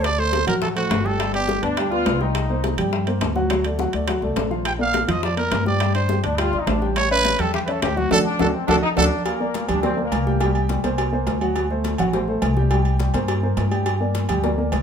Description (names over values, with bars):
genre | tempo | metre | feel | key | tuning
latin, salsa | 208 BPM | 4/4 | straight | G harmonic minor from 9.3 s | A4 = 440 Hz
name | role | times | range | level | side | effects
growling trumpet | melody | 0.0-1.6, 4.7-9.0 s | F#4 to G5 | -23 LUFS | right 3 dB | none
dark upright piano | accompaniment | 0.0-14.8 s | F3 to G5 | -24 LUFS | left 1 dB | none
upright bass | bass | 0.0-14.8 s | G1 to G2 | -24 LUFS | equal | none
bongos and cowbell | percussion | 0.0-14.8 s | none | -29 LUFS | left 5 dB | none
congas | percussion | 0.0-14.8 s | none | -29 LUFS | equal | none
timbales and agogo bells | percussion | 0.0-14.8 s | none | -29 LUFS | right 3 dB | none
bright trombone section | second line | 1.6-2.8, 6.2-10.6 s | Bb3 to F4 | -25 LUFS | left 2 dB | none
room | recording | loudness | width
moderate large studio reverb, RT60 1.2 s | minimal, uncompressed stereo recording | -18 LUFS | side -7 dB against mid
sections
0.0-9.3 A section; 9.3-14.8 B section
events
band accent 8.1-9.3; drum fill 8.4-9.3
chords
0.0 D7; 1.2 G7; 2.4 Cm7; 3.5 D; 4.7 Bb; 5.8 Gsus2; 7.0 A7; 8.1 D; 9.3 Gm; 10.4 C5; 11.6 D7; 12.7 C5; 13.9 Gm